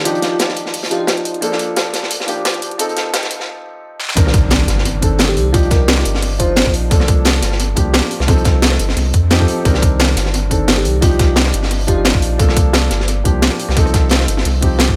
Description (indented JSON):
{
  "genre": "liquid drum and bass",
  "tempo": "175 BPM",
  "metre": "4/4",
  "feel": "swing 54% on 16ths",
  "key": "C dorian",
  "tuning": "A4 = 440 Hz",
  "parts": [
    { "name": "warm concert grand piano", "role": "accompaniment", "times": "0.0-15.0 s", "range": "Eb3 to Bb4", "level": "-23 LUFS", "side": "equal", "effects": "low-pass filter, analog delay" },
    { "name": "bell-like FM electric piano", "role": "melody", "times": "0.1-1.1, 5.3-6.7, 10.8-12.0 s", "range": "F4 to C5", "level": "-26 LUFS", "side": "equal", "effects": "chorus, tremolo, analog delay" },
    { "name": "crunchy breakbeat drum kit", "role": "drums", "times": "0.1-14.9 s", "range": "hi-hat, snare drum", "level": "-23 LUFS", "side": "equal", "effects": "high-pass filter on hats, studio reverb, high-pass filter on snare, high-pass filter on room" },
    { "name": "drum and bass drum kit", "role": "drums", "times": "0.1-15.0 s", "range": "hi-hat, rim click, snare drum", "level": "-21 LUFS", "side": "equal", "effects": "overdrive, high-pass filter on snare, studio reverb, high-pass filter on hats, analog delay" },
    { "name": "saturated sub bass", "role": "bass", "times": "4.2-15.0 s", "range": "G1 to F2", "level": "-19 LUFS", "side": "equal", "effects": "none" },
    { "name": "electronic kick drum", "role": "drums", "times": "4.2-15.0 s", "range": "none", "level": "-16 LUFS", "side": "equal", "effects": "overdrive, studio reverb" },
    { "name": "impact", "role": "sound effects", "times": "4.2-5.5 s", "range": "none", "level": "-24 LUFS", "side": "equal", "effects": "none" }
  ],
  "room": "light reverb, studio ambience",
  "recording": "echo-heavy mix, high-pass filter",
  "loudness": "-15 LUFS",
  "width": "mono",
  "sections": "0.0-4.2 A section; 4.2-15.0 B section",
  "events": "build-up 0.0-4.2; filter sweep on grand piano 0.0-4.2; filter sweep 0.0-4.2; break 3.5-4.2; drum fill 4.0; drop 4.2-15.0; impact 4.2-5.5",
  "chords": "0.1 Ebmaj9; 1.4 Bbmaj7; 2.8 F7; 4.2 Cm9; 5.5 Ebmaj9; 6.9 Bbmaj7; 8.3 F7; 9.7 Cm9; 11.0 Ebmaj9; 12.4 Bbmaj7; 13.8 F7"
}